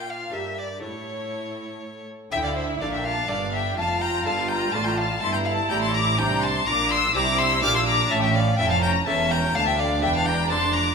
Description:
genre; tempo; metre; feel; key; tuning
classical, baroque-style concerto movement with solo episodes; 125 BPM; 3/4; straight; D minor; A4 = 440 Hz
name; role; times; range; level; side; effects
dark studio violin section; melody; 0.0-10.9 s; A4 to F6; -28 LUFS; left 3 dB; none
rich violin; melody; 0.0-10.9 s; C5 to D6; -26 LUFS; left 3 dB; none
warm studio violin section; second line; 0.0-10.9 s; C#5 to F6; -28 LUFS; left 1 dB; none
lute; accompaniment; 0.0-10.9 s; D2 to Bb4; -35 LUFS; right 2 dB; none
rich chamber viola section; accompaniment; 0.0-10.9 s; C#4 to G4; -30 LUFS; equal; none
warm chamber cello section; bass; 0.0-10.9 s; D2 to D3; -30 LUFS; right 4 dB; none
rich chamber double bass section; bass; 2.3-10.9 s; E1 to D2; -29 LUFS; right 3 dB; none
room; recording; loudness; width
wet recital hall reverb, RT60 1.4 s; minimal, uncompressed stereo recording; -20 LUFS; side -5 dB against mid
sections
0.0-2.3 A section; 2.3-10.9 B section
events
none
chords
0.3 Gm; 0.8 A; 2.3 D5; 3.8 Dm/F; 5.2 G5; 6.7 Gm/Bb; 8.1 A; 9.5 Dm

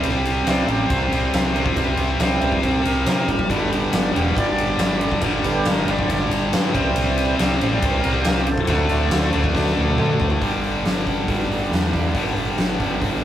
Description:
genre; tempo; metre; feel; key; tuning
classic rock; 139 BPM; 4/4; straight; G major; A4 = 444 Hz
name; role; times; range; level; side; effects
tonewheel organ; sustained chords; 0.0-13.2 s; D3 to G5; -27 LUFS; right 2 dB; overdrive, slow rotary speaker
cranked stack guitar; riff; 0.0-13.2 s; G2 to D4; -26 LUFS; right 6 dB; overdrive
tight distorted guitar; riff; 0.0-13.2 s; G2 to D4; -23 LUFS; left 4 dB; distortion
huge arena drum kit; drums; 0.0-13.1 s; hi-hat, kick drum, ride cymbal, snare drum, toms; -23 LUFS; equal; none
growling fingered electric bass; bass; 0.1-13.2 s; E1 to D3; -24 LUFS; equal; overdrive
room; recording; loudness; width
light reverb; rough rehearsal-room recording; -18 LUFS; side -11 dB against mid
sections
0.0-10.4 A section; 10.4-13.2 B section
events
tonewheel organ solo 0.0-10.4; drum fill 9.6-10.4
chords
0.0 C; 3.5 G; 6.7 C; 8.7 D; 10.4 G

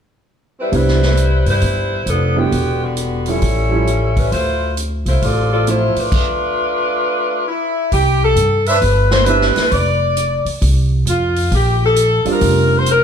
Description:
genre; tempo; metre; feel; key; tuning
jazz, big band swing; 133 BPM; 4/4; swing 65% on 8ths; C major; A4 = 440 Hz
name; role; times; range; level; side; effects
clear saxophone section; melody; 0.6-13.0 s; D3 to D5; -16 LUFS; left 1 dB; none
clear concert grand piano; accompaniment; 0.7-5.9, 9.3-9.5, 12.3-12.8 s; F3 to F4; -21 LUFS; right 4 dB; none
upright bass; bass; 0.7-13.0 s; E1 to G2; -16 LUFS; equal; none
swinging big-band drum kit; drums; 0.7-13.0 s; crash cymbal, hi-hat, kick drum, snare drum; -22 LUFS; equal; none
warm trumpet section; stabs; 8.7-9.5 s; D4 to E5; -20 LUFS; right 2 dB; none
room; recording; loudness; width
wet large studio reverb, RT60 1.3 s; heard from further back in the room; -13 LUFS; side -8 dB against mid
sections
0.7-7.9 A section; 7.9-13.0 B section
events
none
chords
0.0 N.C.; 0.7 Cmaj7; 2.5 Em9; 3.4 A7b13; 4.3 Dm9; 6.1 Dm69/A; 7.9 Cmaj9; 9.7 F5; 11.5 Bb69

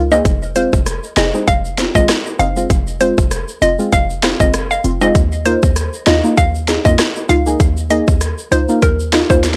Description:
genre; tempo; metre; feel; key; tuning
dancehall; 98 BPM; 4/4; swing 56% on 16ths; F phrygian; A4 = 440 Hz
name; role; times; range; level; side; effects
short 808-style bass; bass; 0.0-9.6 s; F1 to F2; -21 LUFS; equal; none
hollow square pluck; melody; 0.1-9.4 s; Bb4 to F5; -20 LUFS; equal; chorus, tape echo
deep mellow chord stab; accompaniment; 0.1-9.4 s; Ab3 to Ab4; -20 LUFS; equal; chorus
timbales and tube shaker; percussion; 0.1-9.6 s; none; -30 LUFS; equal; none
island pop drum kit; drums; 0.3-9.6 s; hi-hat, kick drum, rim click, snare drum; -18 LUFS; equal; overdrive
room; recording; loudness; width
little or no reverb; dry, gritty hardware recording, cassette tape; -15 LUFS; mono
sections
0.0-9.6 A section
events
none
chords
0.3 Fm; 5.2 Ebsus2

